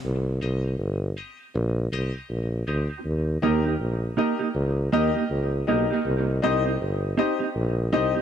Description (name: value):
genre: reggae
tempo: 80 BPM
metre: 4/4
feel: swing 58% on 16ths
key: C phrygian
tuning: A4 = 440 Hz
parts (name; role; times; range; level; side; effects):
- mellow tuba; bass; 0.0-8.1 s; G1 to Eb2; -25 LUFS; equal; none
- mellow electric guitar; accompaniment; 0.4-8.2 s; Bb3 to G4; -27 LUFS; right 6 dB; high-pass filter, tape echo
- warm baby grand piano; stabs; 0.4-8.1 s; Eb4 to Eb5; -28 LUFS; left 6 dB; high-pass filter, tape echo
room: light reverb, studio ambience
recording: none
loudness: -23 LUFS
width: side -9 dB against mid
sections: 0.0-8.2 A section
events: filter sweep 0.0-3.0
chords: 0.0 Cm; 3.0 Eb; 6.1 Cm